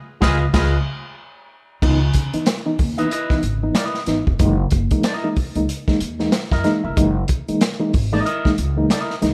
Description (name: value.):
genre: funk.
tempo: 93 BPM.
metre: 4/4.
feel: swing 60% on 16ths.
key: unclear.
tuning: A4 = 440 Hz.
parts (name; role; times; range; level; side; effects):
clear horn section; second line; 0.2-0.7 s; E#4 to B4; -29 LUFS; equal; none.
electric guitar with an envelope filter; accompaniment; 0.2-9.1 s; E4 to E5; -28 LUFS; equal; none.
upright bass; bass; 0.2-9.3 s; E#1 to F#2; -24 LUFS; equal; none.
crunchy breakbeat drum kit; drums; 0.2-9.3 s; crash cymbal, hi-hat, kick drum, snare drum; -23 LUFS; equal; none.
reed electric piano; stabs; 1.8-9.3 s; C#3 to D#4; -24 LUFS; equal; fast tremolo.
room: light reverb.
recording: none.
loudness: -19 LUFS.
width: mono.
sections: 0.0-1.8 A section; 1.8-9.3 B section.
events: band accent 0.0-1.8.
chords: 0.0 C#9; 1.8 C#m9; 4.4 F#13.